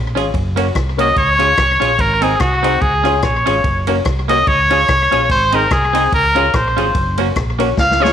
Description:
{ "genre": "ska", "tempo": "145 BPM", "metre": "4/4", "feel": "swing 57% on 8ths", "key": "Db major", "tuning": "A4 = 440 Hz", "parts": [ { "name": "fingered electric bass", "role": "bass", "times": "0.0-8.1 s", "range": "Gb1 to Db2", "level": "-20 LUFS", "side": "equal", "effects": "none" }, { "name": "semi-hollow electric guitar", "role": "accompaniment", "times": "0.2-8.1 s", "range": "Bb3 to Ab4", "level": "-22 LUFS", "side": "right 12 dB", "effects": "none" }, { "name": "warm upright piano", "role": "stabs", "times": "0.2-8.1 s", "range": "C4 to Db5", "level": "-22 LUFS", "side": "left 11 dB", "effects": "none" }, { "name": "swinging big-band drum kit", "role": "drums", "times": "0.2-8.1 s", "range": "kick drum, ride cymbal, rim click, snare drum", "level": "-21 LUFS", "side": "left 1 dB", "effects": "slapback echo" }, { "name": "clear trumpet", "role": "melody", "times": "1.0-8.1 s", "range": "Gb4 to F5", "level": "-14 LUFS", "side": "equal", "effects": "slapback echo" } ], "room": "light reverb, studio ambience", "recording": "1960s-style stereo with parts hard left and right, vinyl crackle", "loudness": "-12 LUFS", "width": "side -9 dB against mid", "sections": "0.0-8.1 A section", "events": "trumpet solo 0.0-8.1; drum fill 7.8-8.1", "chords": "0.3 Gb; 1.2 Db; 2.0 Ab; 2.8 Db; 3.6 Gb; 4.5 Db; 5.3 Ab; 6.1 Db; 6.9 Gb" }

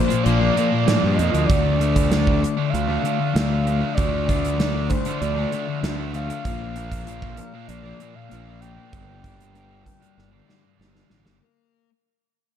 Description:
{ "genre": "rock, shoegaze and dream pop", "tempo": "97 BPM", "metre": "4/4", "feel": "straight", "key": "G minor", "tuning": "A4 = 436 Hz", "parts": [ { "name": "breathy flute-like synth lead", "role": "melody", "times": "0.0-10.8 s", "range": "C5 to G5", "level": "-28 LUFS", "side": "right 1 dB", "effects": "chorus, tremolo, slapback echo" }, { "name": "crunchy overdriven guitar", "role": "riff", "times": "0.0-1.5 s", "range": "Bb2 to Bb3", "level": "-26 LUFS", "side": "right 2 dB", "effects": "none" }, { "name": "thick fuzz guitar", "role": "riff", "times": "0.0-11.9 s", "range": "G2 to D4", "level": "-26 LUFS", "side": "left 9 dB", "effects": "distortion, wide subtle chorus" }, { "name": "biting overdriven guitar", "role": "riff", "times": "0.1-11.4 s", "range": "G2 to D4", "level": "-30 LUFS", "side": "right 12 dB", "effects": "reverse reverb" }, { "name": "gated 80s drum kit", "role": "drums", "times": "0.1-11.4 s", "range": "hi-hat, kick drum, snare drum", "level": "-23 LUFS", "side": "right 2 dB", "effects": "none" }, { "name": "fuzz fingered electric bass", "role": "bass", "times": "0.3-11.4 s", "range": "G1 to A2", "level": "-24 LUFS", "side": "right 1 dB", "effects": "overdrive" } ], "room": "small room ambience", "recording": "dark, warm production", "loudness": "-19 LUFS", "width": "side -9 dB against mid", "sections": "0.0-11.4 A section", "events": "fade-out 0.0-11.4; drum fill 10.2-11.4", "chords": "0.0 Bb; 1.5 Dm; 6.4 Bb; 8.9 Gm" }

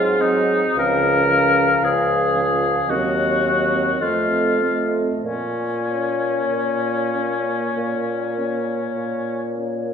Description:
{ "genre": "classical, slow romantic movement for wind quintet", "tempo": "47-58 BPM", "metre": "4/4", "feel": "rubato", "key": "Bb minor", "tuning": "A4 = 440 Hz", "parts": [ { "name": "warm oboe", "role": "second line", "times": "0.0-9.5 s", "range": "Db4 to Bb4", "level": "-22 LUFS", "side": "left 2 dB", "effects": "none" }, { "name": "warm French horn", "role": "accompaniment", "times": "0.0-9.9 s", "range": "F3 to Bb3", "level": "-29 LUFS", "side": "right 1 dB", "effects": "none" }, { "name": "warm clarinet", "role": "accompaniment", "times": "0.0-9.9 s", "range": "C4 to Db4", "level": "-30 LUFS", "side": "right 6 dB", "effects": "none" }, { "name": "mellow bassoon", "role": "bass", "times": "0.0-9.9 s", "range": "Db2 to Bb2", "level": "-22 LUFS", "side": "right 1 dB", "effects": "none" }, { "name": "mellow hollow silver concert flute", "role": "melody", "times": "0.2-9.9 s", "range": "Db5 to F5", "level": "-26 LUFS", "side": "left 6 dB", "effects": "none" } ], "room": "wet recital hall reverb, RT60 1.4 s", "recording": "recorded in a church or concert hall", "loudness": "-18 LUFS", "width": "side -7 dB against mid", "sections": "0.0-9.9 A section", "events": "none", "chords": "0.0 Ab7; 0.8 Db; 2.9 Cdim/Eb; 4.0 F7; 5.2 Bbm" }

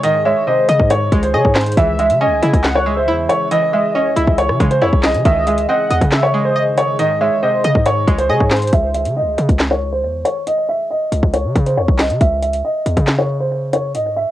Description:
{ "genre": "hip hop, drill", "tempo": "138 BPM", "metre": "4/4", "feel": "half-time", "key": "C# harmonic minor", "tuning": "A4 = 440 Hz", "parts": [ { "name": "warm baby grand piano", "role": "melody", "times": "0.0-14.3 s", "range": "G#4 to E5", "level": "-17 LUFS", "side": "right 1 dB", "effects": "low-pass filter, cassette tape, tape echo" }, { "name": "string-like resonator pluck", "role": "accompaniment", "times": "0.0-8.7 s", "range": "B#2 to D#5", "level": "-22 LUFS", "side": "right 1 dB", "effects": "chorus, low-pass filter, cassette tape" }, { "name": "deep dark ambient pad", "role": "sustained chords", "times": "0.0-8.7 s", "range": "C#3 to G#4", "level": "-28 LUFS", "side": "left 2 dB", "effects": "chorus, built-in reverb, cassette tape" }, { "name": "hard-hitting 808-style bass", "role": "bass", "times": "0.0-14.3 s", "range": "B#1 to C#3", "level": "-19 LUFS", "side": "equal", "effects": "none" }, { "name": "drill drum kit", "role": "drums", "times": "0.0-14.0 s", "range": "handclaps, hi-hat, kick drum, rim click, snare drum", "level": "-16 LUFS", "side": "equal", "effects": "cassette tape" }, { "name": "warm velvety synth lead", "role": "second line", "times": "0.3-8.7 s", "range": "B#4 to G#5", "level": "-21 LUFS", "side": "left 1 dB", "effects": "chorus, cassette tape, tape echo" } ], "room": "little or no reverb", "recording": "home recording on cassette", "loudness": "-13 LUFS", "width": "side -13 dB against mid", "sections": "0.0-8.7 A section; 8.7-14.3 B section", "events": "none", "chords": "0.0 G#; 1.8 C#madd9; 5.3 G#/C#; 8.7 C#sus2; 12.2 G#5/C#" }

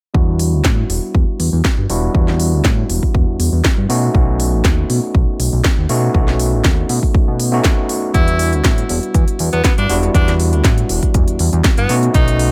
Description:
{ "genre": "nu-disco, nu disco", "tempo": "120 BPM", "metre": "4/4", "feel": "swing 53% on 16ths", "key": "E dorian", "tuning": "A4 = 439 Hz", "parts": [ { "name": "overdriven tine electric piano", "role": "accompaniment", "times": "0.1-12.5 s", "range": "G3 to F#4", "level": "-23 LUFS", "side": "equal", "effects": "sidechain pumping, low-pass filter, delay" }, { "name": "fat analog bass", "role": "bass", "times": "0.1-12.5 s", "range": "E1 to B2", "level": "-19 LUFS", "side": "equal", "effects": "none" }, { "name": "electronic kick drum", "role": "drums", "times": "0.1-12.3 s", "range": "none", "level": "-17 LUFS", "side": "equal", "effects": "none" }, { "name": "house drum kit", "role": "drums", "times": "0.4-12.5 s", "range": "hi-hat, snare drum", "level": "-24 LUFS", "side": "equal", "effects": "none" }, { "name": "edgy tenor saxophone", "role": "melody", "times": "8.1-12.5 s", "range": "B3 to E4", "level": "-24 LUFS", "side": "equal", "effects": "delay" } ], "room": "digital ambience", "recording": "none", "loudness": "-15 LUFS", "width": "mono", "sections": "0.1-12.5 A section", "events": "filter sweep on tine electric piano 0.1-12.5", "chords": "0.1 Em7; 3.9 B9; 8.1 Em7; 11.9 B9" }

